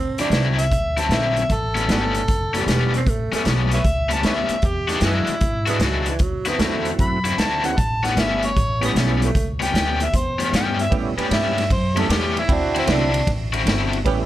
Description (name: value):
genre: electric blues shuffle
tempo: 153 BPM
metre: 4/4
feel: swing 66% on 8ths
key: A mixolydian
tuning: A4 = 443 Hz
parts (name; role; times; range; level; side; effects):
- growling tenor saxophone; second line; 0.0-9.5 s; E3 to D4; -26 LUFS; right 5 dB; none
- upright bass; bass; 0.0-14.3 s; E1 to A2; -24 LUFS; equal; none
- raw garage guitar; riff; 0.2-14.0 s; A2 to F#4; -23 LUFS; left 4 dB; overdrive, harmonic tremolo
- vintage drum kit; drums; 0.2-14.2 s; hi-hat, kick drum, ride cymbal, snare drum; -24 LUFS; equal; none
- overdriven harmonica; melody; 0.6-13.3 s; B3 to B5; -24 LUFS; equal; none
- overdriven tonewheel organ; accompaniment; 5.7-14.3 s; F#3 to G4; -27 LUFS; right 5 dB; slow rotary speaker, chorus vibrato
- mellow horn section; stabs; 10.9-14.2 s; B3 to G4; -26 LUFS; right 6 dB; digital delay
room: light reverb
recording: none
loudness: -18 LUFS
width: side -14 dB against mid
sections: 0.0-10.9 A section; 10.9-14.3 B section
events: harmonica solo 10.9-14.3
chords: 0.0 D9; 1.5 A9; 4.6 E9; 6.2 D9; 7.8 A9; 12.5 D9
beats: 0.32 0.71 1.10 | 1.49 1.89 2.28 2.67 | 3.06 3.46 3.85 4.24 | 4.63 5.03 5.42 5.81 | 6.21 6.60 6.99 7.38 | 7.78 8.17 8.56 8.95 | 9.35 9.74 10.13 10.52 | 10.92 11.31 11.70 12.09 | 12.48 12.88 13.27 13.66 | 14.05